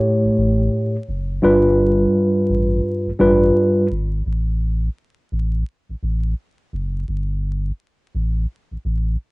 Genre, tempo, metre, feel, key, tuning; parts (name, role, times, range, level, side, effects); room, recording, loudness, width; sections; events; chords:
hip hop; 85 BPM; 4/4; swing 61% on 16ths; A4 = 440 Hz
mellow tine electric piano; accompaniment; 0.0-3.9 s; G2 to C#5; -15 LUFS; equal; medium stereo tremolo, cassette tape, high-pass filter, low-pass filter
warm sub bass; bass; 0.2-9.2 s; F#1 to A1; -21 LUFS; equal
light reverb; home recording on cassette, vinyl crackle, nothing above 10.8 kHz; -17 LUFS; side -25 dB against mid
0.0-9.3 A section
break 4.3-9.3
0.0 A7; 1.4 G7; 4.3 N.C.; 7.1 A7(no3)